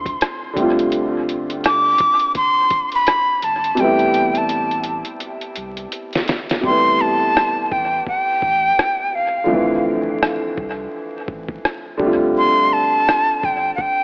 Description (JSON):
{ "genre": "lo-fi hip hop", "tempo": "84 BPM", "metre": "4/4", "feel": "swing 62% on 16ths", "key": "A minor", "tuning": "A4 = 436 Hz", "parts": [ { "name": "breathy bright jazz flute", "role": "melody", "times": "0.0-14.0 s", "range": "F5 to D6", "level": "-17 LUFS", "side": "equal", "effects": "dub echo" }, { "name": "warm upright piano", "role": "accompaniment", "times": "0.0-14.0 s", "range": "C3 to F4", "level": "-21 LUFS", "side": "equal", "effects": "cassette tape, dub echo" }, { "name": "warm sub bass", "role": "bass", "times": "0.0-13.7 s", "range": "G1 to D2", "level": "-36 LUFS", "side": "equal", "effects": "none" }, { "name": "lo-fi sampler-style drum kit", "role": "drums", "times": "0.1-14.0 s", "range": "hi-hat, kick drum, rim click, snare drum", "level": "-22 LUFS", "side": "equal", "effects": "dub echo" } ], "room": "moderate echo chamber reverb, RT60 2.2 s", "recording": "echo-heavy mix, vinyl crackle, AM radio sound", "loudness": "-15 LUFS", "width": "side -30 dB against mid", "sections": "0.0-6.6 A section; 6.6-14.0 B section", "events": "drum fill 3.8-6.6; hi-hats muted 6.6-14.0", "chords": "0.0 Dm7; 0.6 G7sus4; 3.8 Am7; 9.5 Dm7; 12.0 G7sus4" }